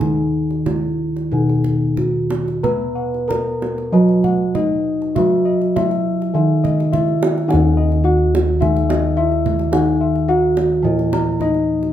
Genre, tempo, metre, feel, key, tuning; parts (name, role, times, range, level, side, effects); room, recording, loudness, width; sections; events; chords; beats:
Javanese gamelan; 91-107 BPM; 4/4; straight; Eb pelog; A4 = 440 Hz
gamelan-type bronze metallophone; melody; 0.0-11.9 s; Eb4 to Cb5-20c; -20 LUFS; equal
gamelan-type bronze metallophone; accompaniment; 0.0-11.9 s; Eb3 to Cb4-20c; -22 LUFS; right 1 dB
gamelan-type bossed gongs; bass; 0.0-11.9 s; Eb2 to Cb5-20c; -20 LUFS; equal
kendang; percussion; 0.0-11.9 s; -25 LUFS; right 4 dB
gamelan-type bossed gongs; arpeggios; 2.6-11.7 s; Eb5 to Bb5-30c; -24 LUFS; left 7 dB
moderate large studio reverb, RT60 1.1 s; band playing live in one room; -15 LUFS; side -11 dB against mid
0.0-7.5 A section; 7.5-11.9 B section
| 0.00 0.66 1.32 1.98 | 2.64 3.29 3.93 4.55 | 5.17 5.76 6.35 6.93 | 7.49 8.05 8.61 9.17 | 9.72 10.28 10.84 11.40